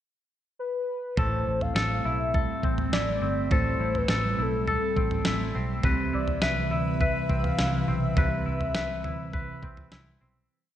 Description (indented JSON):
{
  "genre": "dream pop",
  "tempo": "103 BPM",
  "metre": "4/4",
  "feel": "straight",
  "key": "A minor",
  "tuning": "A4 = 440 Hz",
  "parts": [
    { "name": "warm velvety synth lead", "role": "melody", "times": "0.6-9.9 s", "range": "A4 to F5", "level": "-32 LUFS", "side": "left 2 dB", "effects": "chorus, digital delay" },
    { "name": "ethereal airy pad", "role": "sustained chords", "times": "1.6-10.5 s", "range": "C3 to B4", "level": "-32 LUFS", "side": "right 1 dB", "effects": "ensemble chorus, built-in reverb" },
    { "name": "twangy electric guitar", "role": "arpeggios", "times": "1.2-10.8 s", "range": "A2 to B4", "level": "-30 LUFS", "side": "left 1 dB", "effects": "lush chorus, digital delay" },
    { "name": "vintage muted fingered electric bass", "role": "bass", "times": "1.2-10.5 s", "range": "G1 to D2", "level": "-31 LUFS", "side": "equal", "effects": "none" },
    { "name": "clean 12-bit digital drum machine", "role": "drums", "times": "1.2-10.1 s", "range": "kick drum, snare drum, toms", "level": "-28 LUFS", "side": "right 1 dB", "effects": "gated reverb" }
  ],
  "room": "moderate lush hall reverb, RT60 2.0 s",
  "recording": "bright 1980s-style digital production",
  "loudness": "-24 LUFS",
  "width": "side -11 dB against mid",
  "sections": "0.0-1.2 pickup bar; 1.2-10.5 verse",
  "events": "fade-out 8.2-10.5",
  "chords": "0.0 N.C.; 1.2 Am7; 5.8 Cmaj7"
}